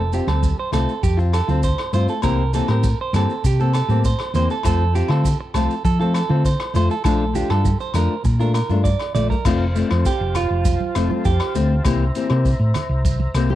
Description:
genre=highlife guitar band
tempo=100 BPM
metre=4/4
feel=straight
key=F major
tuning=A4 = 439 Hz
part: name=clean electric guitar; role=arpeggios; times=0.0-11.5 s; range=F4 to D5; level=-25 LUFS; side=right 8 dB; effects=cassette tape, tape echo
part: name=hollow-body short-scale fingered electric bass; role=bass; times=0.0-13.6 s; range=F1 to F3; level=-19 LUFS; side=equal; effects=none
part: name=nylon-string guitar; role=accompaniment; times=0.1-13.6 s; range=E3 to G4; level=-24 LUFS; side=left 5 dB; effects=cassette tape
part: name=vintage drum kit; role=drums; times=0.1-13.5 s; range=crash cymbal, hi-hat, kick drum, rim click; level=-24 LUFS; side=equal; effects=cassette tape
part: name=maracas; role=percussion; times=0.1-13.5 s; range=none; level=-39 LUFS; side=right 9 dB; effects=none
part: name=agogo bells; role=percussion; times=0.3-13.5 s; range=none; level=-33 LUFS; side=left 9 dB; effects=none
part: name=congas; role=percussion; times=0.3-13.6 s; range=none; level=-30 LUFS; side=right 6 dB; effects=none
part: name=mellow tonewheel organ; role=sustained chords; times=9.5-13.6 s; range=C5 to Bb5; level=-31 LUFS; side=equal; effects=overdrive, chorus vibrato, slow rotary speaker, cassette tape
room=light reverb, studio ambience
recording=home recording on cassette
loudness=-17 LUFS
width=side -13 dB against mid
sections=0.0-9.4 A section; 9.4-13.6 B section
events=clean electric guitar solo 9.4-13.6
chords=0.0 F; 2.2 C7; 4.6 F; 7.0 Bbmaj7; 9.4 F; 11.9 C7

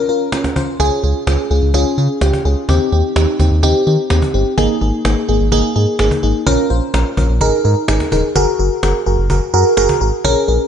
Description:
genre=synth-pop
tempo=127 BPM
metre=4/4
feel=straight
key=unclear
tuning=A4 = 441 Hz
part: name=FM electric piano with soft pad layer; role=accompaniment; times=0.0-10.7 s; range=Bb3 to C5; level=-15 LUFS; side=equal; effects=chorus, phaser
part: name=cajon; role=drums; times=0.1-10.5 s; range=none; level=-22 LUFS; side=equal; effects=none
part: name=round analog bass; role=bass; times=0.8-10.6 s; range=Eb1 to Eb3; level=-15 LUFS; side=equal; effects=none
room=light reverb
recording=nothing above 10.3 kHz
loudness=-12 LUFS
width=side -8 dB against mid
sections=0.0-8.4 A section; 8.4-10.7 B section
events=none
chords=0.0 Bbm; 0.8 Db; 2.7 Eb6; 4.6 Absus2; 6.5 Bbm; 7.4 Absus2; 8.4 Gbadd9

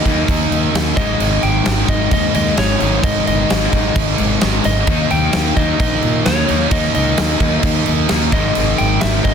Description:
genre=hard rock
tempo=131 BPM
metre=4/4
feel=straight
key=unclear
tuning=A4 = 438 Hz
part: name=lightly driven lead guitar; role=melody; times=0.0-9.3 s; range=C#5 to G5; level=-21 LUFS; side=left 2 dB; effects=slapback echo
part: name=crunchy overdriven guitar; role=riff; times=0.0-9.3 s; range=G#2 to D#4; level=-21 LUFS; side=left 12 dB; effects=none
part: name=high-gain distorted guitar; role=riff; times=0.0-9.3 s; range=G#2 to D#4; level=-22 LUFS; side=right 13 dB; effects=distortion
part: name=fuzz fingered electric bass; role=bass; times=0.1-9.3 s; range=G1 to A#2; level=-20 LUFS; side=equal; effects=overdrive
part: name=huge arena drum kit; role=drums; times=0.1-9.3 s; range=crash cymbal, kick drum, snare drum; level=-18 LUFS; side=right 1 dB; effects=none
room=light reverb, small room ambience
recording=dense, heavily limited modern master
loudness=-13 LUFS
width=side -7 dB against mid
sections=0.0-9.3 A section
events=none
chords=0.0 D#5; 1.0 G#5; 4.9 D#5; 8.3 G#5

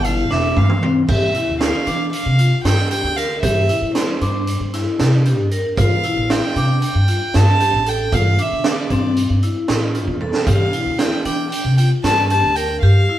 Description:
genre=progressive instrumental, band music in an uneven meter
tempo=230 BPM (eighths)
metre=9/8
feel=straight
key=unclear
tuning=A4 = 440 Hz
part: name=warm violin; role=melody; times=0.0-13.2 s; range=C5 to A5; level=-21 LUFS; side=right 1 dB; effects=none
part: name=vibraphone with hard mallets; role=arpeggios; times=0.0-13.2 s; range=C4 to Bb4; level=-22 LUFS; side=left 3 dB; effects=none
part: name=upright bass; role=bass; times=0.0-13.1 s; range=E1 to G3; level=-18 LUFS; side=equal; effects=none
part: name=street-band drum kit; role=drums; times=0.0-12.7 s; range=crash cymbal, hi-hat, kick drum, snare drum, toms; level=-22 LUFS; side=right 3 dB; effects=none
room=moderate stone room reverb, RT60 1.1 s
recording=band playing live in one room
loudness=-15 LUFS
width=side -12 dB against mid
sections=0.0-1.1 A section; 1.1-13.2 B section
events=violin solo 0.0-1.1; drum fill 0.3-1.1, 10.1-10.5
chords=0.0 F5; 1.1 G7(no3); 3.4 G5; 5.8 Dm; 8.1 Fmaj7/G; 10.5 G7(no3)

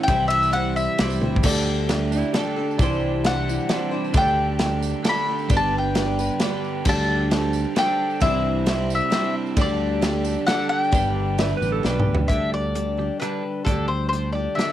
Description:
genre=folk rock and heartland rock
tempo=133 BPM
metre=3/4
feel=straight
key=unclear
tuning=A4 = 438 Hz
part: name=mandolin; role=melody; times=0.0-14.7 s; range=A4 to B5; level=-24 LUFS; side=left 2 dB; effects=cassette tape
part: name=picked steel-string acoustic guitar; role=accompaniment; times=0.0-14.7 s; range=C3 to C5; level=-29 LUFS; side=left 8 dB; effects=cassette tape
part: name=warm grand piano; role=accompaniment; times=0.0-12.3 s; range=D4 to E5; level=-33 LUFS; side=right 8 dB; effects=cassette tape
part: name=twelve-string electric guitar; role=riff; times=0.0-14.7 s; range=G2 to A4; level=-28 LUFS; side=right 8 dB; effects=cassette tape
part: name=fingered electric bass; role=bass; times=0.1-14.5 s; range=G1 to D2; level=-25 LUFS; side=equal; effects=none
part: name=natural country drum kit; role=drums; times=0.1-14.7 s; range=crash cymbal, hi-hat, kick drum, ride cymbal, rim click, snare drum, toms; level=-25 LUFS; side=equal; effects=none
part: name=tambourine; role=percussion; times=0.1-11.9 s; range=none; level=-42 LUFS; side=right 12 dB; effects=none
part: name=clean lap steel guitar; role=second line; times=2.1-3.1, 11.4-12.2 s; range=D4 to E5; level=-30 LUFS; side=right 7 dB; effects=cassette tape
room=light reverb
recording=home recording on cassette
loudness=-19 LUFS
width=side -12 dB against mid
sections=0.0-1.4 A section; 1.4-12.3 B section; 12.3-14.7 C section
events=drum fill 1.2, 11.8-12.3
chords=0.1 C; 1.4 Dsus4; 2.8 Cadd9; 4.1 Dsus4; 5.5 G; 6.9 Dsus4; 8.2 Cadd9; 9.6 Dsus4; 10.9 G; 12.3 Dsus4

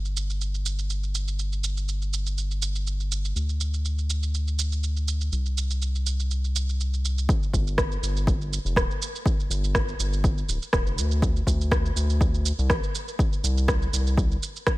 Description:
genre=afro house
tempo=122 BPM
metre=4/4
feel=swing 54% on 16ths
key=unclear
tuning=A4 = 441 Hz
part: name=round analog bass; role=bass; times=0.0-14.4 s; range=D1 to D2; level=-25 LUFS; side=equal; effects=tube saturation, sidechain pumping
part: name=electronic shaker and rim click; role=drums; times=0.1-14.8 s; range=none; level=-30 LUFS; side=right 2 dB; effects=studio reverb
part: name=electronic kick drum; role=drums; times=7.3-14.8 s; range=none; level=-24 LUFS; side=equal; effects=overdrive, studio reverb
room=little or no reverb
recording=none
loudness=-23 LUFS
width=side -19 dB against mid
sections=0.0-7.3 A section; 7.3-14.8 B section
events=drop 7.3-14.8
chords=none

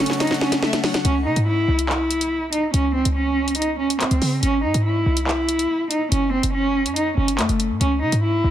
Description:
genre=hip hop, drill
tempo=142 BPM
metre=4/4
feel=half-time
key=C# harmonic minor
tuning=A4 = 440 Hz
part: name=dark cello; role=melody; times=0.0-8.5 s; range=A3 to E4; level=-21 LUFS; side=right 1 dB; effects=low-pass filter, digital delay
part: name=soft electric-piano-like synth keys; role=accompaniment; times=0.0-1.1 s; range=C#3 to C#5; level=-27 LUFS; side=left 5 dB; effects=chorus, low-pass filter
part: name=airy breathy pad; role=sustained chords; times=0.0-1.0 s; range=A4 to C#6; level=-35 LUFS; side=right 3 dB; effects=chorus
part: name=short 808-style bass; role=bass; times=0.0-8.5 s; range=F#1 to C#3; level=-22 LUFS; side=equal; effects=none
part: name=drill drum kit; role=drums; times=0.1-8.2 s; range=handclaps, hi-hat, snare drum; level=-23 LUFS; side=equal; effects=none
part: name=dark studio violin section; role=second line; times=0.2-1.0 s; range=E5 to F#5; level=-34 LUFS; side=equal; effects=digital delay
room=little or no reverb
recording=dense, heavily limited modern master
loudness=-18 LUFS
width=side -11 dB against mid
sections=0.0-1.0 A section; 1.0-8.5 B section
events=drum fill 0.0-1.0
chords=0.0 F#m; 1.0 C#m; 4.4 G#; 6.1 F#5; 7.8 C#m

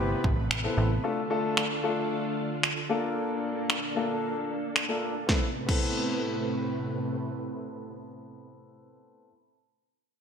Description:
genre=dance-pop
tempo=113 BPM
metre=4/4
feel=straight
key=A minor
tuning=A4 = 440 Hz
part: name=warm concert grand piano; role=accompaniment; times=0.0-9.3 s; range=A3 to A4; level=-31 LUFS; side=left 3 dB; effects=sidechain pumping, low-pass filter
part: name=string machine, full ensemble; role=sustained chords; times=0.0-8.9 s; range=A2 to B4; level=-33 LUFS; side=right 2 dB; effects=ensemble chorus, sidechain pumping, low-pass filter
part: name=plucky analog bass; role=bass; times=0.0-1.0 s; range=G1 to A1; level=-28 LUFS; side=equal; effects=sidechain pumping
part: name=downlifter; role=sound effects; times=0.0-1.0 s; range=none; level=-46 LUFS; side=right 1 dB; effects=none
part: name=house drum kit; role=drums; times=0.2-5.8 s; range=crash cymbal, finger snaps, kick drum, snare drum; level=-28 LUFS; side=equal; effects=none
room=moderate lush hall reverb, RT60 1.6 s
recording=bright 1980s-style digital production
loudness=-26 LUFS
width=side -7 dB against mid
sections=0.0-5.3 A section; 5.3-9.5 B section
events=none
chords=0.0 Amadd9; 1.0 Dm; 2.9 Bbmaj7; 5.3 Amadd9

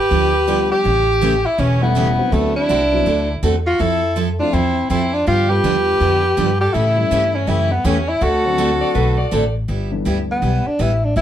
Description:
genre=country, western swing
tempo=163 BPM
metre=4/4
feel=swing 63% on 8ths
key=G major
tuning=A4 = 440 Hz
part: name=breathy tenor saxophone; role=melody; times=0.0-11.2 s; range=A3 to G4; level=-18 LUFS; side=equal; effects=plate reverb
part: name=clear fiddle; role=second line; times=0.0-9.3 s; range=B3 to B4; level=-25 LUFS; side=right 2 dB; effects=none
part: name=picked steel-string acoustic guitar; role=accompaniment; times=0.1-11.2 s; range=C3 to A4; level=-22 LUFS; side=right 3 dB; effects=none
part: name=upright bass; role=bass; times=0.1-11.2 s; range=E1 to A2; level=-20 LUFS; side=equal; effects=none
part: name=dark upright piano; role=accompaniment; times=0.5-10.4 s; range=D3 to F#4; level=-24 LUFS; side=left 5 dB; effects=none
part: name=clean lap steel guitar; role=second line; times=8.8-9.5 s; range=B4 to D5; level=-25 LUFS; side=left 2 dB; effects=none
room=moderate studio ambience, RT60 0.5 s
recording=none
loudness=-15 LUFS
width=side -10 dB against mid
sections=0.0-9.7 A section; 9.7-11.2 B section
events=none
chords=0.0 G7; 0.8 A7; 2.3 D13; 3.8 Fmaj7; 5.3 G7; 6.7 A7; 8.2 D7; 9.7 G6

